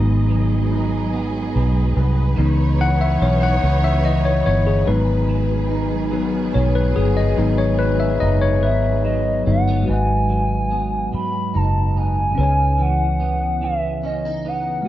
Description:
slow six-eight R&B; 48 BPM (dotted quarters); 6/8; straight; C# minor; A4 = 440 Hz
electric guitar at the edge of break-up; second line; 0.0-14.9 s; G#2 to D#4; -26 LUFS; right 5 dB; ensemble chorus
tine electric piano; accompaniment; 0.0-14.9 s; C#3 to G#5; -22 LUFS; left 4 dB
warm studio string section; sustained chords; 0.0-9.8 s; D#3 to D#5; -29 LUFS; right 1 dB
vintage muted fingered electric bass; bass; 0.0-14.8 s; F#1 to C#2; -19 LUFS; equal
hollow clarinet-like synth lead; melody; 8.6-14.9 s; D#5 to B5; -23 LUFS; equal; chorus
light reverb; -16 LUFS; side -13 dB against mid
0.0-9.9 A section; 9.9-14.9 B section
tine electric piano solo 0.0-9.9
0.0 G#m7; 2.4 C#m9; 4.9 G#m7; 12.4 C#m9
1.12 | 2.37 3.62 | 4.87 6.12 | 7.37 8.62 | 9.87 11.12 | 12.37 13.62 | 14.87

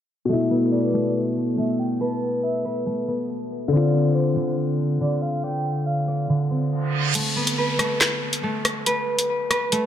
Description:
hip hop, drill; 140 BPM; 4/4; half-time; A minor; A4 = 435 Hz
breathy flute-like synth lead; second line; 0.3-6.3 s; C5 to A5; -31 LUFS; right 3 dB; chorus, tremolo, ping-pong delay
warm concert grand piano; accompaniment; 0.3-7.2 s; B2 to F4; -24 LUFS; left 4 dB
concert harp; arpeggios; 0.3-9.9 s; D3 to D5; -24 LUFS; right 1 dB; ping-pong delay
reverse cymbal and downlifter; sound effects; 6.8-9.9 s; -30 LUFS; right 3 dB
drill drum kit; drums; 7.1-9.8 s; crash cymbal, handclaps, hi-hat, rim click, snare drum; -22 LUFS; equal
moderate recital hall reverb, RT60 1.5 s, digital ambience; low-pass filter; -20 LUFS; side -10 dB against mid
0.3-7.1 A section; 7.1-9.9 B section
filter sweep 0.3-7.1; reverse cymbal 6.8; kick muted 7.1-9.9
0.3 Asus2; 3.7 Dm7; 7.1 Asus2
| 0.29 0.72 1.15 1.58 | 2.01 2.44 2.86 3.29 | 3.72 4.15 4.58 5.01 | 5.43 5.86 6.29 6.72 | 7.15 7.58 8.01 8.44 | 8.86 9.29 9.72

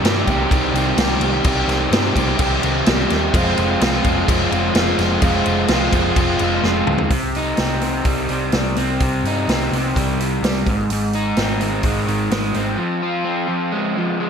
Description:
indie rock; 127 BPM; 4/4; straight; C minor; A4 = 440 Hz
crunchy overdriven guitar; riff; 0.0-14.3 s; Ab2 to G4; -18 LUFS; equal
hollow-body short-scale picked electric bass; bass; 0.0-12.8 s; F1 to G2; -24 LUFS; equal
vintage drum kit; drums; 0.0-12.7 s; crash cymbal, hi-hat, kick drum, snare drum, toms; -20 LUFS; equal; gated reverb
moderate plate reverb, RT60 1.1 s, small room ambience; bright 1980s-style digital production; -16 LUFS; side -7 dB against mid
0.0-7.1 A section; 7.1-14.3 B section
drum fill 6.6-7.1
0.0 Cm; 3.3 Fm; 7.1 Cm; 10.7 Ab; 12.8 Fm
0.04 0.51 0.98 | 1.45 1.92 2.39 2.87 | 3.34 3.81 4.28 4.75 | 5.22 5.69 6.17 6.64 | 7.11 7.58 8.06 8.53 | 9.01 9.48 9.95 10.43 | 10.90 11.37 11.85 12.32 | 12.79 13.26 13.73 14.20

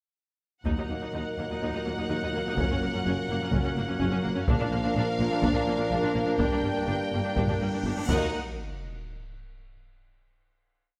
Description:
cinematic, epic orchestral film score; 126 BPM; 4/4; straight; Eb minor; A4 = 439 Hz
warm trombone section; sustained chords; 0.6-8.3 s; G2 to G3; -37 LUFS; equal
rich studio violin section; melody; 0.7-8.4 s; F5 to G5; -38 LUFS; equal
warm symphonic violin section; second line; 0.7-8.4 s; Bb4; -37 LUFS; equal
clear symphonic viola section; accompaniment; 0.7-8.4 s; Bb3 to Eb4; -37 LUFS; equal
warm French horn section; sustained chords; 0.7-8.3 s; Bb3 to Eb4; -37 LUFS; equal
clear symphonic cello section; bass; 0.7-8.4 s; Eb2 to Bb2; -36 LUFS; equal
clear symphonic double bass section; bass; 0.7-8.4 s; Gb1 to Eb2; -35 LUFS; equal
taiko ensemble; drums; 0.7-9.0 s; -33 LUFS; equal
cymbal swell and sub drop; sound effects; 7.5-10.0 s; -43 LUFS; equal
moderate recital hall reverb, RT60 1.9 s; -28 LUFS; mono
0.7-8.3 theme; 8.3-10.3 final hit
cymbal swell 7.5-8.3; impact 8.3-10.3
0.7 Ebm; 2.6 Gb; 4.5 Bb; 6.4 Gm; 8.1 Ebm; 8.3 N.C.
| 0.67 1.15 1.62 2.10 | 2.58 3.06 3.53 4.01 | 4.48 4.96 5.43 5.91 | 6.40 6.88 7.37 7.86 | 8.34 8.82 9.30 9.78

